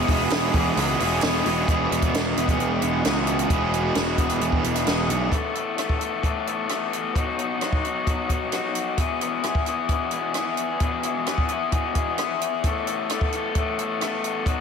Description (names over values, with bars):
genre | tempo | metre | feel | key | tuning
indie rock | 131 BPM | 4/4 | straight | E major | A4 = 440 Hz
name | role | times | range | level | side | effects
string machine, cellos | sustained chords | 0.0-1.7 s | G#4 to D#6 | -38 LUFS | right 1 dB | none
fuzz guitar | riff | 0.0-5.3 s | E2 to G#4 | -26 LUFS | right 9 dB | distortion, lush chorus, tape echo, slapback echo
raw garage guitar | riff | 0.0-14.6 s | E2 to A4 | -24 LUFS | left 5 dB | overdrive, slapback echo
fuzz picked electric bass | bass | 0.0-5.3 s | E1 to C#2 | -27 LUFS | equal | overdrive
compact cocktail drum kit | drums | 0.1-14.6 s | hi-hat, kick drum, rim click, snare drum | -26 LUFS | equal | none
group handclap | percussion | 0.3-1.3 s | none | barely audible | none | none
room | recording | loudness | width
moderate lush hall reverb, RT60 1.7 s, small room ambience | big arena sound | -21 LUFS | side -6 dB against mid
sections
0.0-1.7 A section; 1.7-5.3 B section; 5.3-14.6 C section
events
none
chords
0.0 Emaj7; 1.7 E; 5.3 Asus2; 7.2 B; 9.0 E; 12.6 Asus2